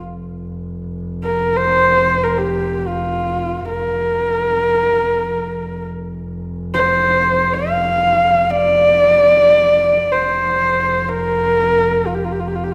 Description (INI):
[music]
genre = mongolian traditional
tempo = free time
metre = none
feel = none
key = F zhi mode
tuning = A4 = 440 Hz
[part]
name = dark double bass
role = drone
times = 0.0-12.7 s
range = F1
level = -27 LUFS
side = equal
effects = none
[part]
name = dark horsehead fiddle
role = melody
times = 1.2-12.7 s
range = F4 to F5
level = -16 LUFS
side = equal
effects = none
[sound]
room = moderate concert hall reverb, RT60 2.0 s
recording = none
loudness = -16 LUFS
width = mono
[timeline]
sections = 0.0-12.7 A section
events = none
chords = none